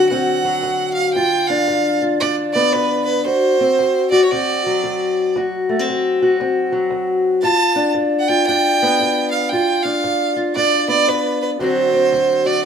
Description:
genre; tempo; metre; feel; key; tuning
acoustic country blues, solo or duo; 115 BPM; 4/4; swing 63% on 8ths; D mixolydian; A4 = 443 Hz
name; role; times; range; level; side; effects
clear fiddle; melody; 0.0-12.6 s; B4 to A5; -18 LUFS; right 3 dB; none
fingerpicked steel-string acoustic guitar; accompaniment; 0.0-12.7 s; D2 to F#4; -17 LUFS; left 2 dB; none
room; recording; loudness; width
wet stone room reverb, RT60 1.1 s; band playing live in one room; -15 LUFS; side -7 dB against mid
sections
0.0-12.7 A section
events
none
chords
0.0 D7; 1.2 G7; 3.3 D7; 7.4 G7; 11.6 D7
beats
0.12 0.65 | 1.17 1.69 2.21 2.74 | 3.26 3.78 4.30 4.83 | 5.35 5.87 6.39 6.91 | 7.43 7.96 8.48 9.00 | 9.52 10.04 10.56 11.08 | 11.60 12.12 12.64

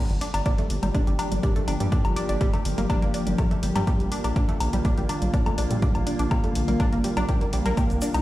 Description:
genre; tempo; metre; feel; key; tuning
melodic techno; 123 BPM; 4/4; straight; unclear; A4 = 440 Hz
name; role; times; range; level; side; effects
evolving wavetable pad; sustained chords; 0.3-8.2 s; C3 to G4; -31 LUFS; equal; chorus, built-in reverb, phaser, sidechain pumping
analog pluck; arpeggios; 0.0-8.2 s; G3 to G4; -29 LUFS; equal; analog chorus, sidechain pumping, tape echo
round analog bass; bass; 0.1-8.2 s; G1 to Bb2; -26 LUFS; equal; tube saturation, sidechain pumping
electronic hi-hat, woodblock and congas; drums; 0.1-8.2 s; none; -31 LUFS; left 1 dB; overdrive
electronic kick drum; drums; 0.5-7.9 s; none; -24 LUFS; equal; overdrive
egg shaker; percussion; 7.8-8.2 s; none; -39 LUFS; left 1 dB; none
room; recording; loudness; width
little or no reverb; played on a big sound system in a bare room, large studio reverb; -21 LUFS; side -16 dB against mid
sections
0.0-8.2 A section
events
none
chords
0.0 Gm7; 3.9 Bb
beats
0.46 0.95 1.43 | 1.92 2.41 2.90 3.38 | 3.87 4.36 4.85 5.34 | 5.82 6.31 6.80 7.29 | 7.78

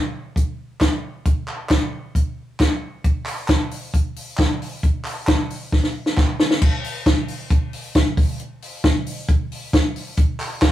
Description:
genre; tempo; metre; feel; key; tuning
indie pop; 134 BPM; 4/4; straight; none; none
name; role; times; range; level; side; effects
compact cocktail drum kit; drums; 0.4-10.7 s; crash cymbal, hi-hat, kick drum, snare drum; -18 LUFS; equal; none
group handclap; percussion; 0.8-6.3, 10.4-10.7 s; none; -30 LUFS; right 1 dB; none
room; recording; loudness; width
moderate studio reverb, RT60 0.7 s; rough rehearsal-room recording, warm saturation; -18 LUFS; side -13 dB against mid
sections
0.0-6.6 A section; 6.6-10.7 B section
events
drum fill 5.7-6.6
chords
none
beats
0.36 0.81 | 1.25 1.70 2.15 2.60 | 3.04 3.49 3.94 4.38 | 4.83 5.28 5.72 6.17 | 6.62 7.06 7.51 7.95 | 8.40 8.84 9.29 9.73 | 10.18 10.62

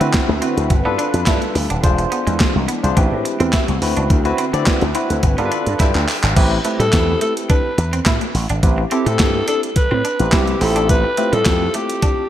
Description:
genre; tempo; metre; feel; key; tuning
early-eighties boogie funk; 106 BPM; 4/4; straight; A minor; A4 = 439 Hz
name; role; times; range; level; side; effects
barky tine electric piano; accompaniment; 0.0-12.2 s; C4 to B5; -22 LUFS; left 1 dB; medium stereo tremolo, slapback echo
lush unison pad; sustained chords; 0.0-6.4 s; D3 to B4; -27 LUFS; equal; chorus
electric guitar at the edge of break-up; riff; 0.0-12.1 s; G3 to E4; -26 LUFS; right 4 dB; wide subtle chorus
slap bass with an envelope filter; bass; 0.0-11.7 s; D#1 to D3; -19 LUFS; equal; none
crisp 8-bit digital drum machine; drums; 0.0-12.2 s; crash cymbal, handclaps, hi-hat, kick drum, snare drum; -18 LUFS; equal; none
growling alto saxophone; melody; 6.7-12.3 s; G4 to B4; -20 LUFS; left 1 dB; slapback echo, tape echo
room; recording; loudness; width
moderate lush hall reverb, RT60 2.0 s; big arena sound; -14 LUFS; side -11 dB against mid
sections
0.0-6.4 A section; 6.4-12.3 B section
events
tine electric piano fill 5.2-6.4; drum fill 5.8-6.4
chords
0.0 D13; 0.7 G9; 1.8 E7b9b13; 3.0 Am9; 3.8 D13; 5.2 G9; 6.4 Am9; 10.6 Dm11/A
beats
0.14 0.71 1.27 | 1.84 2.40 2.97 3.54 | 4.10 4.67 5.23 5.80 | 6.37 6.93 7.50 8.06 | 8.63 9.20 9.76 10.33 | 10.89 11.46 12.03

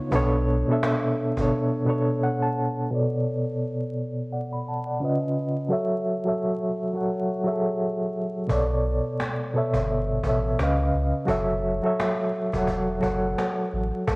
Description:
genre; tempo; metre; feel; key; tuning
lo-fi hip hop; 86 BPM; 4/4; swing 58% on 16ths; B minor; A4 = 440 Hz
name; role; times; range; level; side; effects
reed electric piano; accompaniment; 0.0-14.2 s; B2 to B5; -23 LUFS; equal; fast tremolo, cassette tape, low-pass filter
saturated sub bass; bass; 0.1-1.5, 8.5-14.2 s; E1 to C#2; -27 LUFS; equal; none
cajon; drums; 0.1-1.5, 8.5-14.2 s; none; -32 LUFS; equal; none
room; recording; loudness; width
light reverb, small room ambience; worn, warbling old tape, cassette tape, vinyl crackle, warbly pitch drift; -22 LUFS; side -28 dB against mid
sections
0.0-2.9 A section; 2.9-14.1 B section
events
drums muted 1.5-2.9; reed electric piano fill 1.9-2.9; filter sweep on reed electric piano 2.9-14.1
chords
0.1 Bm9; 2.9 Bm7; 5.0 C#7; 5.7 F#m7; 8.5 Bm7; 10.6 C#7; 11.3 F#m7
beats
| 0.12 0.82 1.51 2.21 | 2.91 3.61 4.30 5.00 | 5.70 6.40 7.10 7.79 | 8.49 9.19 9.89 10.58 | 11.28 11.98 12.68 13.38 | 14.07

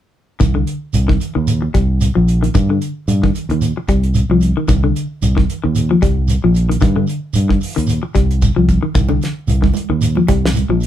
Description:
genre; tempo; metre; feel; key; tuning
afrobeat; 112 BPM; 4/4; swing 56% on 16ths; C minor; A4 = 440 Hz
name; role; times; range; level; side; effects
clean electric guitar; arpeggios; 0.4-10.9 s; D3 to G3; -18 LUFS; left 3 dB; none
fingered electric bass; bass; 0.4-10.9 s; Bb1 to G2; -16 LUFS; equal; none
damped 70s drum kit; drums; 0.4-10.9 s; hi-hat, kick drum, snare drum; -19 LUFS; equal; none
shekere; percussion; 0.4-10.9 s; none; -20 LUFS; right 2 dB; none
congas; percussion; 9.1-10.7 s; none; -22 LUFS; right 8 dB; none
room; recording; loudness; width
light reverb; band playing live in one room; -13 LUFS; side -11 dB against mid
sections
0.4-10.9 A section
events
none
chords
0.4 Cmadd11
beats
| 0.41 0.94 1.48 2.01 | 2.54 3.08 3.61 4.15 | 4.68 5.22 5.75 6.29 | 6.82 7.35 7.89 8.42 | 8.95 9.48 10.02 10.55

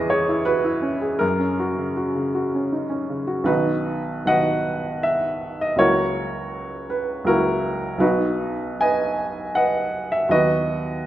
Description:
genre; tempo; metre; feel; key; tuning
classical, romantic character piece for solo piano; 79 BPM; 3/4; uneven beats, rubato; B major; A4 = 440 Hz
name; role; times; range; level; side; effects
warm upright piano; solo; 0.0-11.1 s; B1 to G#5; -20 LUFS; equal; none
room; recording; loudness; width
wet recital hall reverb, RT60 1.7 s; none; -20 LUFS; side -13 dB against mid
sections
0.0-3.5 A section; 3.5-11.1 B section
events
none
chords
0.0 C#m/E; 1.2 F#; 3.5 B; 5.8 F#7/C#; 8.0 B; 10.3 B/D#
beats
0.49 | 1.22 1.97 2.72 | 3.48 4.29 5.05 | 5.81 6.55 7.28 | 8.01 8.82 9.56 | 10.30 11.03

